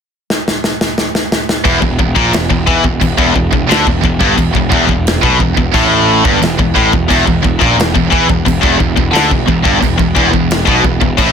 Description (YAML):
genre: heavy metal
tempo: 88 BPM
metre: 4/4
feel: straight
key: E minor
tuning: A4 = 440 Hz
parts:
  - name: modern studio drum kit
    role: drums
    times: 0.3-11.3 s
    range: crash cymbal, kick drum, snare drum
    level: -15 LUFS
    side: equal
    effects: soft clipping on snare
  - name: biting overdriven guitar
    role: riff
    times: 1.6-11.3 s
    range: E2 to E3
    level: -17 LUFS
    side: right 1 dB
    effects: none
  - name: scooped high-gain guitar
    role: riff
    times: 1.6-11.3 s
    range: E2 to E3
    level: -17 LUFS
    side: right 13 dB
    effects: distortion
  - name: tight distorted guitar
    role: riff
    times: 1.6-11.3 s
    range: E2 to E3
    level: -14 LUFS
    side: left 11 dB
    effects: distortion
  - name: fuzz picked electric bass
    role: bass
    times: 1.7-11.3 s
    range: E1 to E2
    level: -17 LUFS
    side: equal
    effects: overdrive
room: light reverb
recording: dense, heavily limited modern master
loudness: -9 LUFS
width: side -7 dB against mid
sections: 0.0-1.6 A section; 1.6-11.3 B section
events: drum fill 0.3-1.6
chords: 0.0 N.C.; 1.6 Em